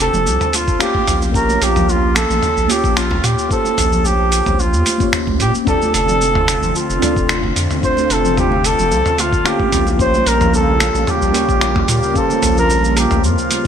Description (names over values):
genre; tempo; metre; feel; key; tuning
sunset chillout; 111 BPM; 4/4; swing 53% on 16ths; unclear; A4 = 440 Hz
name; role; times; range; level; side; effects
mellow flugelhorn; melody; 0.0-13.7 s; F4 to C5; -17 LUFS; right 1 dB; digital delay
mellow FM electric piano; accompaniment; 0.0-13.7 s; Bb3 to F5; -21 LUFS; moving between left 4 dB and right 2 dB; chorus, phaser, auto-pan, vintage 12-bit sampler grit
round analog bass; bass; 0.0-13.4 s; F1 to Bb2; -19 LUFS; equal; none
dusty soul sampler-style drum kit; drums; 0.0-13.6 s; finger snaps, hi-hat, shaker, toms; -20 LUFS; right 1 dB; none
congas; percussion; 0.1-13.6 s; none; -27 LUFS; right 3 dB; none
electronic kick drum; drums; 0.7-12.3 s; none; -22 LUFS; equal; none
lush unison pad; sustained chords; 5.7-13.7 s; Db3 to F4; -23 LUFS; left 1 dB; chorus
room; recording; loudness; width
moderate plate reverb, RT60 3.3 s; bright 1980s-style digital production; -13 LUFS; side -8 dB against mid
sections
0.0-13.7 A section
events
none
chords
0.0 F6; 1.1 Bbm6; 5.7 F6; 9.7 Bbm6